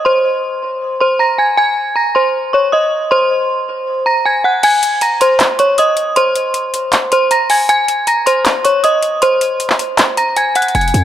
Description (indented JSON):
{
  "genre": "hip hop, trap",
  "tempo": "157 BPM",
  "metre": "4/4",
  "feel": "half-time",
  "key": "unclear",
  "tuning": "A4 = 440 Hz",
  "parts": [
    { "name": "metallic FM bell", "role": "melody", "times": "0.0-11.0 s", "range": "C5 to Bb6", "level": "-12 LUFS", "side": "equal", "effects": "chorus, low-pass filter, digital delay" },
    { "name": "trap drum kit", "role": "drums", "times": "4.6-11.0 s", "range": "crash cymbal, handclaps, hi-hat", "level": "-16 LUFS", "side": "equal", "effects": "none" },
    { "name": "short 808-style bass", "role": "bass", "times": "10.7-11.0 s", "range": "F1 to F2", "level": "-14 LUFS", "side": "equal", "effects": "none" }
  ],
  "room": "light reverb",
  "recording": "none",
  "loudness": "-11 LUFS",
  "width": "side -11 dB against mid",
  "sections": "0.0-4.6 A section; 4.6-11.0 B section",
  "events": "kick muted 4.6-10.7",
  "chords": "0.0 C7(no3); 1.6 Eb5; 4.6 Cm7; 7.7 Eb5",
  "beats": "| 0.05 0.43 0.81 1.20 | 1.58 1.96 2.34 2.72 | 3.11 3.49 3.87 4.25 | 4.63 5.02 5.40 5.78 | 6.16 6.54 6.93 7.31 | 7.69 8.07 8.46 8.84 | 9.22 9.60 9.98 10.37 | 10.75"
}